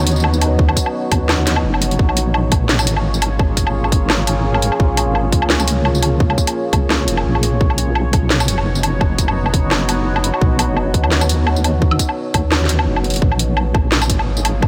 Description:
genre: half-time drum and bass.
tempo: 171 BPM.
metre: 4/4.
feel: swing 55% on 16ths, half-time.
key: Bb phrygian.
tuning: A4 = 440 Hz.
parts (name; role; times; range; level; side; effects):
deep dark ambient pad; sustained chords; 0.0-14.7 s; Bb3 to Db5; -24 LUFS; equal; chorus, built-in reverb, sidechain pumping.
deep soft wobble bass; bass; 0.0-14.7 s; F1 to D#2; -20 LUFS; equal; chorus.
drum and bass drum kit; drums; 0.1-14.7 s; hi-hat, snare drum, tambourine, woodblock; -22 LUFS; equal; none.
electronic kick drum; drums; 0.6-14.7 s; none; -18 LUFS; equal; none.
room: moderate huge ambient reverb, RT60 4.0 s.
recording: dreamy mix soaked in reverb.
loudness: -16 LUFS.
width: mono.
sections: 0.0-13.2 A section; 13.2-14.7 A section.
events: drop 0.0-13.2, 13.2-14.7.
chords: 0.0 Badd9; 2.0 Bbm7; 7.6 Badd9; 13.2 Bbm7.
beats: 0.24 | 0.59 0.94 1.29 1.64 | 1.99 2.34 2.69 3.05 | 3.40 3.75 4.10 4.45 | 4.80 5.15 5.50 5.85 | 6.20 6.55 6.91 7.26 | 7.61 7.96 8.31 8.66 | 9.01 9.36 9.71 10.06 | 10.41 10.77 11.12 11.47 | 11.82 12.17 12.52 12.87 | 13.22 13.57 13.92 14.27 | 14.62.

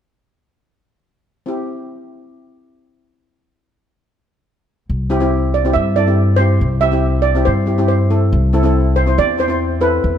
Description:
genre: calypso.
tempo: 140 BPM.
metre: 4/4.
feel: straight.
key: C major.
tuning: A4 = 439 Hz.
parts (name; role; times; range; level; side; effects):
steel pan; accompaniment; 1.5-10.0 s; C4 to C5; -19 LUFS; left 2 dB; none.
upright bass; bass; 4.9-10.2 s; C2 to G2; -16 LUFS; equal; none.
steel pan; melody; 5.5-10.2 s; B4 to E5; -18 LUFS; right 4 dB; none.
room: light reverb.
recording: close, detailed microphones.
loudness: -13 LUFS.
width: side -9 dB against mid.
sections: 1.5-4.9 A section; 4.9-10.2 B section.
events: none.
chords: 1.5 C; 8.3 Am/C.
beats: | 1.47 1.90 2.33 2.76 | 3.19 3.62 4.04 4.47 | 4.90 5.33 5.75 6.18 | 6.61 7.04 7.47 7.90 | 8.32 8.75 9.18 9.61 | 10.04.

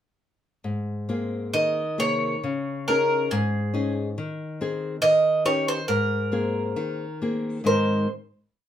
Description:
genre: fado-style ballad.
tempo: 69 BPM.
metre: 2/4.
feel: rubato.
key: Ab major.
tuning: A4 = 441 Hz.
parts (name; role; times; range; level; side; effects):
nylon-string guitar; accompaniment; 0.6-8.1 s; Ab2 to Bb4; -26 LUFS; left 2 dB; none.
bowl-back mandolin; melody; 1.5-8.1 s; Ab4 to Eb5; -23 LUFS; right 1 dB; none.
room: moderate studio ambience, RT60 0.5 s.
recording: minimal, uncompressed stereo recording.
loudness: -22 LUFS.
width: side -10 dB against mid.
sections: 0.6-7.7 A section; 7.7-8.7 final chord.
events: none.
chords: 0.6 Abadd9; 2.4 Dbsus2; 4.2 Ab/Eb; 5.0 Eb7; 5.9 Abadd9.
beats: | 0.64 1.54 | 2.44 3.31 | 4.17 5.03 | 5.88 6.76 | 7.66.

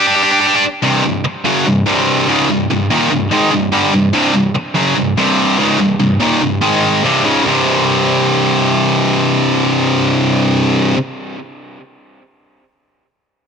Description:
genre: metal.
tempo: 145 BPM.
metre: 4/4.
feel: straight.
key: C minor.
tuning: A4 = 440 Hz.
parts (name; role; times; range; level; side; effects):
high-gain distorted guitar; solo; 0.0-11.0 s; C2 to G4; -11 LUFS; equal; distortion, tape echo.
room: moderate studio reverb, RT60 0.8 s.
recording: none.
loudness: -11 LUFS.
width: side -6 dB against mid.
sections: 0.8-7.4 A section; 7.4-10.8 B section.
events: none.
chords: 0.0 G5; 0.8 Cm; 6.6 Ab5; 7.0 C5.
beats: 0.01 0.42 | 0.83 1.25 1.66 2.07 | 2.48 2.90 3.31 3.73 | 4.14 4.55 4.97 5.38 | 5.79 6.21 6.62 7.03 | 7.45 7.86 8.28 8.69 | 9.10 9.52 9.93 10.34.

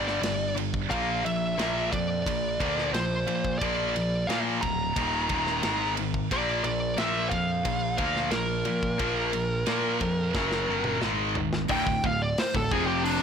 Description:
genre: heavy metal.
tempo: 89 BPM.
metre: 4/4.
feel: straight.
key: unclear.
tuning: A4 = 440 Hz.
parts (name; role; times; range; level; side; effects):
high-gain lead guitar; melody; 0.0-13.2 s; D4 to Bb5; -29 LUFS; equal; distortion.
distorted electric guitar; riff; 0.0-13.2 s; D2 to Bb3; -31 LUFS; left 13 dB; overdrive.
scooped high-gain guitar; riff; 0.0-13.2 s; D2 to Bb3; -32 LUFS; right 16 dB; distortion.
overdriven picked electric bass; bass; 0.0-13.2 s; D1 to Bb2; -33 LUFS; equal; none.
tight metal drum kit; drums; 0.1-13.2 s; hi-hat, kick drum, ride cymbal, snare drum, toms; -33 LUFS; equal; soft clipping on kick.
crunchy overdriven guitar; riff; 11.7-13.2 s; D2 to F3; -30 LUFS; equal; none.
room: little or no reverb.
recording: blown-out, overdriven recording, overdrive.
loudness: -24 LUFS.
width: side -7 dB against mid.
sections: 0.0-11.7 A section; 11.7-13.2 B section.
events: drum fill 10.3-11.7; lead electric guitar solo 11.7-13.2.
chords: 0.0 G5; 0.9 Bb; 5.0 Eb5; 5.6 G#5; 6.3 Bb5; 10.3 F#5; 11.0 G#5; 11.7 Dm.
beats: 0.23 | 0.90 1.58 2.25 2.93 | 3.60 4.28 4.95 5.63 | 6.30 6.98 7.65 8.33 | 9.00 9.68 10.35 11.02 | 11.70 12.37 13.04.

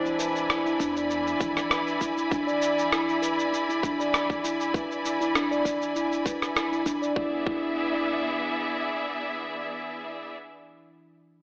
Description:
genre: organic downtempo.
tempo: 99 BPM.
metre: 4/4.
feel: swing 53% on 16ths.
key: unclear.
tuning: A4 = 440 Hz.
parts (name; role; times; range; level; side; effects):
oud; melody; 0.0-1.7 s; D4; -35 LUFS; equal; tape echo.
bright symphonic string section; sustained chords; 0.0-10.4 s; B3 to B5; -29 LUFS; equal; sidechain pumping.
warm sub bass; bass; 0.0-1.8 s; E1 to E2; -45 LUFS; equal; tube saturation, sidechain pumping.
bronze singing bowl; texture; 0.0-7.2 s; E3 to E4; -42 LUFS; left 1 dB; none.
electronic shaker and rim click; drums; 0.1-7.1 s; none; -29 LUFS; equal; none.
steel tongue drum; arpeggios; 0.2-7.6 s; D4 to D5; -28 LUFS; equal; low-pass filter, tape echo.
electronic kick drum; drums; 0.8-7.7 s; none; -33 LUFS; equal; none.
room: moderate echo chamber reverb, RT60 1.8 s, studio reverb.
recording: dry, gritty hardware recording, AM radio sound.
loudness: -24 LUFS.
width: side -29 dB against mid.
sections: 0.0-7.2 A section; 7.2-9.6 B section.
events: none.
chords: 0.0 E7.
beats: 0.50 1.10 1.71 | 2.32 2.92 3.53 4.13 | 4.74 5.35 5.95 6.56 | 7.17 7.77 8.38 8.98.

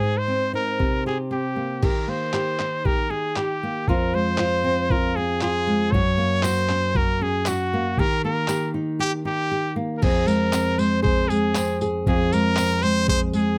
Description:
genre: acoustic pop.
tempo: 117 BPM.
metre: 4/4.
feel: swing 55% on 16ths.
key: F minor.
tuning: A4 = 440 Hz.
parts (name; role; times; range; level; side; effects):
bright trumpet; melody; 0.0-13.6 s; Gb4 to Db5; -27 LUFS; equal; none.
nylon-string guitar; accompaniment; 0.0-13.6 s; F2 to Ab4; -25 LUFS; equal; none.
dusty soul sampler-style drum kit; drums; 0.8-13.5 s; crash cymbal, handclaps, kick drum, tambourine; -28 LUFS; equal; none.
tambourine; percussion; 6.4-12.7 s; none; -39 LUFS; equal; none.
room: light reverb.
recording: close, detailed microphones.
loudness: -22 LUFS.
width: mono.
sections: 0.0-1.8 A section; 1.8-10.0 B section; 10.0-13.6 C section.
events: none.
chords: 0.0 Ab; 0.8 C5; 1.8 Eb; 3.9 Fm; 5.9 Gb; 8.0 Eb; 10.0 Fm.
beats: 0.28 0.80 1.31 | 1.82 2.34 2.85 3.36 | 3.88 4.39 4.90 5.41 | 5.93 6.44 6.95 7.46 | 7.98 8.49 9.00 9.51 | 10.02 10.53 11.04 11.55 | 12.06 12.57 13.08.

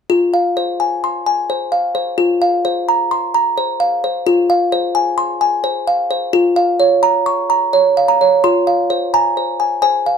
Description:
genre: classical, lullaby for music box.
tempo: 86 BPM.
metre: 3/4.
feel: straight.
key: F minor.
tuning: A4 = 440 Hz.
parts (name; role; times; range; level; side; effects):
music box; solo; 0.1-10.2 s; F4 to Db6; -13 LUFS; equal; none.
room: moderate studio reverb, RT60 0.5 s.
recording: dark, warm production.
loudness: -13 LUFS.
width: side -6 dB against mid.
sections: 0.1-8.4 A section; 8.4-10.2 B section.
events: none.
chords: 0.1 Fm; 2.2 Fsus4; 4.3 Fm; 6.3 Bbm/F; 8.4 Fm.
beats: | 0.09 0.79 1.48 | 2.18 2.87 3.57 | 4.26 4.95 5.64 | 6.33 7.02 7.72 | 8.44 9.13 9.83.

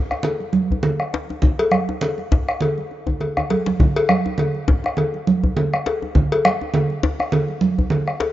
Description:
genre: west african traditional, West African drum ensemble.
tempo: 102 BPM.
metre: 4/4.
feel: swing 56% on 16ths.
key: none.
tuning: none.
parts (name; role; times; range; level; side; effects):
bombo; percussion; 0.1-8.3 s; none; -21 LUFS; equal; none.
djembe; percussion; 0.1-8.3 s; none; -25 LUFS; left 3 dB; none.
congas; percussion; 0.2-8.1 s; none; -21 LUFS; right 4 dB; none.
cowbell; percussion; 0.2-8.3 s; none; -25 LUFS; left 3 dB; none.
room: light reverb, small room ambience.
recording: rough home demo mix, nothing above 7.6 kHz.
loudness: -17 LUFS.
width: side -14 dB against mid.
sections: 0.0-8.3 A section.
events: drum fill 3.1-3.8.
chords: none.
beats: 0.26 0.85 | 1.44 2.03 2.62 3.21 | 3.80 4.38 4.97 5.56 | 6.15 6.74 7.33 7.91.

